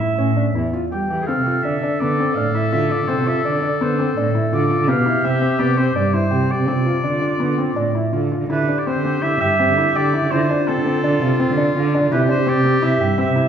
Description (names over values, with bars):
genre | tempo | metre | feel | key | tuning
contemporary instrumental, chamber music in an uneven meter | 166 BPM | 5/4 | straight | D dorian | A4 = 439 Hz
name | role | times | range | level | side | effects
warm oboe | melody | 0.0-13.5 s | A4 to G5 | -23 LUFS | right 1 dB | none
felt-muted upright piano | arpeggios | 0.0-13.5 s | B3 to G4 | -22 LUFS | left 1 dB | none
dark cello | bass | 0.2-13.5 s | E2 to G3 | -20 LUFS | right 2 dB | none
bright clarinet | second line | 1.2-13.5 s | F4 to A4 | -24 LUFS | left 2 dB | none
room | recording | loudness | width
wet recital hall reverb, RT60 1.4 s | heard from further back in the room | -16 LUFS | side -8 dB against mid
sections
0.0-8.5 A section; 8.5-13.5 B section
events
none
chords
0.0 A7(no3); 1.3 Dm7; 4.9 Cmaj7; 6.7 Dm7; 8.5 C/D; 10.3 F6/D; 12.1 C